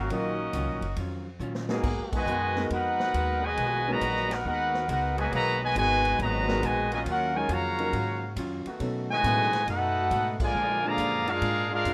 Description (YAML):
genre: jazz, big band swing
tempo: 138 BPM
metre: 4/4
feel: swing 67% on 8ths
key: Eb minor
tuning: A4 = 441 Hz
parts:
  - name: warm trumpet section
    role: melody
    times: 0.0-11.9 s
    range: Db4 to Bb5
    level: -29 LUFS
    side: equal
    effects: none
  - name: clear trombone section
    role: second line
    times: 0.0-11.9 s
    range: A2 to Gb4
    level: -36 LUFS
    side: equal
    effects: none
  - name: bright trombone section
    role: sustained chords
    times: 0.0-11.0 s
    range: D3 to Ab4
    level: -39 LUFS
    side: equal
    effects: none
  - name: upright bass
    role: bass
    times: 0.0-11.9 s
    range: Gb1 to B2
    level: -35 LUFS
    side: equal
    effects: none
  - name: archtop guitar, miked and amplified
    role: accompaniment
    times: 0.1-11.9 s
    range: Bb2 to Bb4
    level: -40 LUFS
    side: equal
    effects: none
  - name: warm concert grand piano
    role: accompaniment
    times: 0.1-11.0 s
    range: Gb3 to Cb5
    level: -35 LUFS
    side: equal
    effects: none
  - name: swinging big-band drum kit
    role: drums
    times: 0.1-11.9 s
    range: crash cymbal, hi-hat, kick drum, ride cymbal, snare drum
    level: -41 LUFS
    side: equal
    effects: none
room: light reverb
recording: rough home demo mix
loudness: -27 LUFS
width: mono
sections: 0.0-11.9 A section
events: drum fill 1.4-1.8; band accent 2.1, 10.3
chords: 0.0 Ebm9; 1.8 Abm9; 7.1 Ebm9; 8.8 B7; 10.5 Bb7